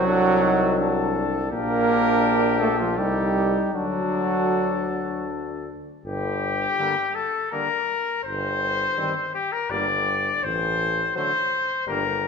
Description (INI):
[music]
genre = classical, brass quintet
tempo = 82 BPM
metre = 3/4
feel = straight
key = G minor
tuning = A4 = 440 Hz
[part]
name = clear trumpet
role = melody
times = 0.0-12.3 s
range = G4 to D5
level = -25 LUFS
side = left 4 dB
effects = none
[part]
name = warm trumpet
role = second line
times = 0.0-12.0 s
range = A3 to Bb4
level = -30 LUFS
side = right 6 dB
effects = none
[part]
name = clear French horn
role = accompaniment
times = 0.0-12.0 s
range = F#3 to Eb4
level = -28 LUFS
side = left 6 dB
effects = none
[part]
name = clear trombone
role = accompaniment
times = 0.0-12.0 s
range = D3 to Bb3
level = -24 LUFS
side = right 2 dB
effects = none
[part]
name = bright bass trombone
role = bass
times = 0.0-12.3 s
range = G1 to D2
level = -29 LUFS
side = equal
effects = none
[sound]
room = wet recital hall reverb, RT60 1.6 s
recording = minimal, uncompressed stereo recording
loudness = -21 LUFS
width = side -5 dB against mid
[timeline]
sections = 0.0-6.0 A section; 6.0-12.3 B section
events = none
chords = 0.0 D7/C; 1.5 Gm/Bb; 3.0 Adim/C; 3.7 D; 6.0 Gm; 8.3 C5/G; 9.7 Gm; 10.4 D7(no3)/A (rootless)